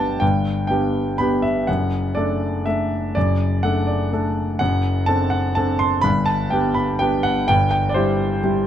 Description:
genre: classical, piano waltz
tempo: 125 BPM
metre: 3/4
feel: rubato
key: G major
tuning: A4 = 440 Hz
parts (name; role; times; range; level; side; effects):
- clear concert grand piano; solo; 0.0-8.7 s; F#1 to C6; -18 LUFS; equal; none
room: light reverb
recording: dark, warm production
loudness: -18 LUFS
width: side -10 dB against mid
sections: 0.0-8.7 A section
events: none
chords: 0.0 G; 1.7 D/F#; 4.6 D7/F#; 6.0 G; 7.5 C/G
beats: | 0.22 0.70 1.20 | 1.68 2.16 2.66 | 3.16 3.63 4.12 | 4.60 5.08 5.57 | 6.04 6.52 7.01 | 7.48 7.95 8.43

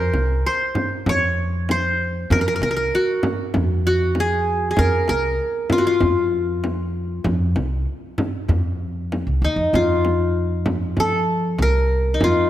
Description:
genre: Arabic maqam ensemble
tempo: 97 BPM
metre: 4/4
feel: straight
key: F maqam kurd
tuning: A4 = 440 Hz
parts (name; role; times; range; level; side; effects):
- qanun; melody; 0.0-12.5 s; Eb4 to Db5; -20 LUFS; left 1 dB; none
- upright bass; bass; 0.0-12.5 s; C2 to F3; -22 LUFS; equal; none
- frame drum; percussion; 0.1-12.3 s; none; -26 LUFS; equal; none
room: light reverb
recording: none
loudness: -18 LUFS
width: side -12 dB against mid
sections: 0.0-9.7 A section; 9.7-12.5 B section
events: none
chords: none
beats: 0.44 1.06 1.69 | 2.30 2.92 3.54 4.16 | 4.78 5.40 6.02 6.64 | 7.26 7.88 8.49 9.11 | 9.73 10.35 10.97 11.59 | 12.21

